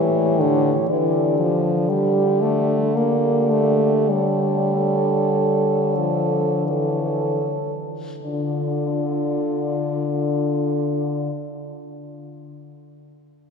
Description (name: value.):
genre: classical, lyrical piece for horn quartet.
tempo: 36-62 BPM.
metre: 3/4.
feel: rubato.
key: D minor.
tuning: A4 = 439 Hz.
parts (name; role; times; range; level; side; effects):
warm French horn; melody; 0.0-11.3 s; C#5 to D5; -28 LUFS; left 9 dB; none.
warm French horn; second line; 0.0-11.3 s; F4 to A4; -26 LUFS; right 6 dB; none.
warm French horn; accompaniment; 0.0-11.3 s; D3 to Bb3; -22 LUFS; left 1 dB; none.
mellow French horn; bass; 0.0-11.3 s; A2 to D3; -24 LUFS; right 1 dB; none.
room: wet cathedral reverb, RT60 4.6 s.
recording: minimal, uncompressed stereo recording.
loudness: -18 LUFS.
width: side -5 dB against mid.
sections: 0.0-8.2 A section; 8.2-12.5 B section.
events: slowing down 0.0-8.2.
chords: 0.0 A7; 0.9 G5/D; 4.1 A7/D; 8.2 Dm.